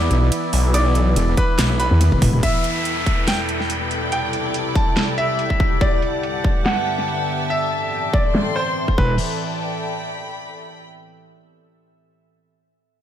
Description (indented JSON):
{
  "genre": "heavy wobble dubstep",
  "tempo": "142 BPM",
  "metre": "4/4",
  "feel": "swing 54% on 16ths, half-time",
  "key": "E minor",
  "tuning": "A4 = 439 Hz",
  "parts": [
    { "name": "bright concert grand piano", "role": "melody", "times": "0.0-9.1 s", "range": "B4 to D6", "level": "-24 LUFS", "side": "equal", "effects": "ping-pong delay" },
    { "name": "evolving wavetable pad", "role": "sustained chords", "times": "0.0-9.2 s", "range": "C2 to E5", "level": "-27 LUFS", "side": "right 1 dB", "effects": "chorus, built-in reverb, sidechain pumping" },
    { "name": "snarling distorted saw bass", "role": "bass", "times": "0.0-1.9 s", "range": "B1", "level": "-17 LUFS", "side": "equal", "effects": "distortion, overdrive" },
    { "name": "dark studio string section", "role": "texture", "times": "0.0-10.8 s", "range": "C3 to C6", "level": "-27 LUFS", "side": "left 1 dB", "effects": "sidechain pumping" },
    { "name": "wobble bass", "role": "bass", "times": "0.1-2.4, 9.0-9.2 s", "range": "E1 to E2", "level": "-16 LUFS", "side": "equal", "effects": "chorus, overdrive" },
    { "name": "dubstep drum kit", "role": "drums", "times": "0.1-9.1 s", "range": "crash cymbal, handclaps, hi-hat, ride cymbal, snare drum, toms", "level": "-24 LUFS", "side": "equal", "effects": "low-pass filter on hats, studio ambience, low-pass filter on cymbals, low-pass filter on snare, low-pass filter on toms" },
    { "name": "electronic kick drum", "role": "drums", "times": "1.4-9.1 s", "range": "none", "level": "-19 LUFS", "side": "equal", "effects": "overdrive, studio ambience" },
    { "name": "downlifter", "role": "sound effects", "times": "2.4-5.8 s", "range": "none", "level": "-28 LUFS", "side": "equal", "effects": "none" }
  ],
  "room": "light reverb",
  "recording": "none",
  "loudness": "-17 LUFS",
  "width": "side -10 dB against mid",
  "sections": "0.0-2.4 A section; 2.4-9.2 B section; 9.2-10.9 C section",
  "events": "drop 0.0-2.4; drum fill 1.6-2.4; filter sweep on drum 2.4-9.2",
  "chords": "0.0 E5; 2.4 Em; 4.1 C; 5.8 G; 7.5 Am; 9.0 Em; 9.2 A9sus4",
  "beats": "0.32 | 0.74 1.16 1.59 2.01 | 2.43 2.85 3.28 3.70 | 4.12 4.54 4.97 5.39 | 5.81 6.23 6.66 7.08 | 7.50 7.92 8.35 8.77 | 9.19 9.61 10.04 10.46"
}